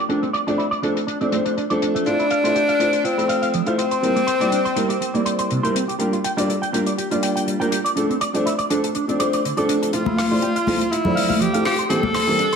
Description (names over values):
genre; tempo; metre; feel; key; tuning
nu-disco, nu disco; 122 BPM; 4/4; swing 54% on 16ths; F major; A4 = 436 Hz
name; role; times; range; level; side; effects
electric guitar with an envelope filter; riff; 0.0-12.6 s; C3 to G5; -25 LUFS; right 3 dB; lush chorus, low-pass filter, diffuse ambient delay
warm grand piano; accompaniment; 0.1-12.4 s; E3 to E6; -22 LUFS; equal; low-pass filter, diffuse ambient delay
damped 70s drum kit; drums; 0.1-12.6 s; hi-hat, rim click, toms; -30 LUFS; left 5 dB; high-pass filter on hats, low-pass filter on hats, high-pass filter on toms, low-pass filter on toms, high-pass filter on snare, low-pass filter on snare, high-pass filter on room, low-pass filter on room
clear tenor saxophone; melody; 2.1-5.2, 9.9-12.6 s; C4 to A4; -21 LUFS; left 2 dB; diffuse ambient delay
congas; percussion; 10.1-12.1 s; none; -23 LUFS; left 2 dB; none
room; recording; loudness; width
wet plate reverb, RT60 1.2 s, studio reverb; dreamy mix soaked in reverb; -18 LUFS; side -6 dB against mid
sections
0.0-9.9 A section; 9.9-12.6 B section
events
build-up 9.9-12.6; drum fill 9.9-12.6; filter sweep on grand piano 9.9-12.6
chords
0.1 Dm7/F; 2.1 Fmaj7; 4.0 C7; 6.0 Gm7; 8.0 Dm7/F; 9.9 Fmaj7; 11.9 C7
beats
| 0.10 0.59 1.08 1.57 | 2.06 2.55 3.05 3.54 | 4.03 4.52 5.01 5.50 | 6.00 6.49 6.98 7.47 | 7.96 8.46 8.95 9.44 | 9.93 10.42 10.91 11.41 | 11.90 12.39